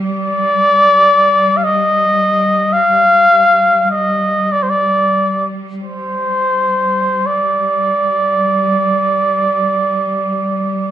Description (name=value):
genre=caucasian folk, Caucasian lament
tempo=free time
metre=none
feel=none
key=unclear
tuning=A4 = 435 Hz
part: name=trumpet with cup mute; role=melody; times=0.0-10.9 s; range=C5 to F5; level=-12 LUFS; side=equal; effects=none
part: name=rich studio cello section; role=drone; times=0.0-10.9 s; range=G3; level=-22 LUFS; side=left 1 dB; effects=none
room=moderate recital hall reverb, RT60 1.7 s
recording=minimal, uncompressed stereo recording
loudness=-11 LUFS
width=side -11 dB against mid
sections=0.0-10.9 A section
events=none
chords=none